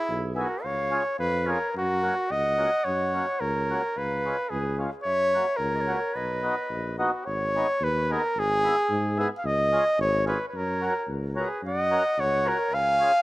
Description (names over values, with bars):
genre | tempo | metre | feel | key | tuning
alpine folk, alpine dance band | 110 BPM | 2/4 | straight | unclear | A4 = 440 Hz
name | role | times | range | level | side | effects
clear flugelhorn | melody | 0.0-13.2 s | E4 to E#5 | -25 LUFS | equal | none
bright wooden flute | second line | 0.0-7.0, 10.6-13.2 s | G#4 to G#5 | -35 LUFS | right 2 dB | none
mellow tuba | bass | 0.1-13.1 s | G#1 to G#2 | -31 LUFS | equal | none
mellow accordion | accompaniment | 0.3-13.1 s | G#3 to A#4 | -32 LUFS | equal | none
room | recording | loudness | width
light reverb, small room ambience | rough home demo mix | -23 LUFS | side -18 dB against mid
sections
0.0-7.3 A section; 7.3-13.2 A section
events
none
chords
0.0 E; 0.6 C#; 1.7 F#; 4.0 C#7; 5.0 F#7; 6.1 B; 7.3 G#m; 8.4 E/G#; 9.4 C#; 10.5 F#; 12.7 C#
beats
0.08 | 0.62 1.18 | 1.73 2.29 | 2.85 3.41 | 3.96 4.51 | 5.05 5.59 | 6.14 6.70 | 7.25 7.81 | 8.36 8.90 | 9.44 9.99 | 10.53 11.08 | 11.63 12.18 | 12.72